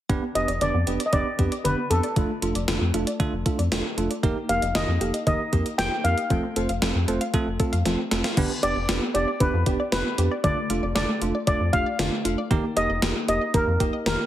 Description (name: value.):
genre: synth-pop.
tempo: 116 BPM.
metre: 4/4.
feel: straight.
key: unclear.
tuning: A4 = 440 Hz.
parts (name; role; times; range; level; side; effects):
bell-like tine electric piano; accompaniment; 0.1-14.2 s; A3 to D5; -28 LUFS; right 4 dB; none.
wide unison pluck; arpeggios; 0.1-14.3 s; D3 to F5; -31 LUFS; left 2 dB; ping-pong delay.
rubbery square bass; bass; 0.1-14.2 s; F1 to F2; -27 LUFS; equal; none.
gated 80s digital drum machine; drums; 0.1-14.2 s; crash cymbal, hi-hat, kick drum, snare drum; -27 LUFS; equal; gated reverb, gated reverb snare.
steel pan; melody; 0.4-14.3 s; A4 to G5; -26 LUFS; left 1 dB; ping-pong delay.
room: moderate plate reverb, RT60 1.2 s, digital ambience.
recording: heavily compressed radio sound.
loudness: -21 LUFS.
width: side -12 dB against mid.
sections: 0.1-8.4 A section; 8.4-14.3 B section.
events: drum fill 7.9-8.4.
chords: 0.1 G/F; 2.2 Dm/F; 4.2 Eb/F; 6.3 F; 8.4 G/F; 10.4 Dm/F; 12.5 Eb/F.